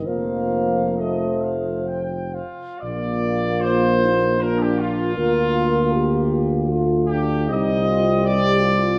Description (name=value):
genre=classical, hymn-like piece for brass band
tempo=59-82 BPM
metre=3/4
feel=rubato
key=Bb major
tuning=A4 = 444 Hz
part: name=mellow trumpet section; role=melody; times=0.0-9.0 s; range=F4 to G5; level=-26 LUFS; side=equal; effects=none
part: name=dark French horn section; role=second line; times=0.0-9.0 s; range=D4 to C5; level=-27 LUFS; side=equal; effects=none
part: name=mellow euphonium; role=accompaniment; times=0.0-9.0 s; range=F3 to Bb3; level=-27 LUFS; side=equal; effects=none
part: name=dark tuba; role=bass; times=0.0-9.0 s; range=F1 to D2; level=-27 LUFS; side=equal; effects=none
part: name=warm euphonium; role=accompaniment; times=0.1-9.0 s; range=A3 to F4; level=-28 LUFS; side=equal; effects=none
room=moderate concert hall reverb, RT60 1.9 s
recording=none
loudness=-20 LUFS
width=mono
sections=0.0-2.8 A section; 2.8-9.0 B section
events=none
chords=0.1 F; 2.8 Bb; 5.2 Bb/D; 7.5 Cm